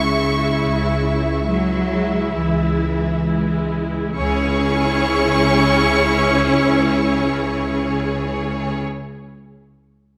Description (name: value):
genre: classical, slow romantic movement for string orchestra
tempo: 32-37 BPM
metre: 4/4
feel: rubato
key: C# minor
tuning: A4 = 441 Hz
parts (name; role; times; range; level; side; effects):
- warm chamber violin section; melody; 0.0-8.8 s; C#6; -27 LUFS; equal; none
- warm symphonic violin section; second line; 0.0-8.8 s; G#4 to E5; -26 LUFS; equal; none
- clear symphonic viola section; accompaniment; 0.0-8.8 s; G#3 to E4; -24 LUFS; equal; none
- rich symphonic cello section; bass; 0.0-8.8 s; C#3 to F#3; -25 LUFS; equal; none
- rich symphonic double bass section; bass; 0.0-8.8 s; C#2; -26 LUFS; equal; none
room: wet recital hall reverb, RT60 1.6 s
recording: none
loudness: -19 LUFS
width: mono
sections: 0.0-4.2 A section; 4.2-10.2 B section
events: slowing down 0.0-4.2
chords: 0.0 C#m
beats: 0.66 2.35 | 4.16 5.90 7.64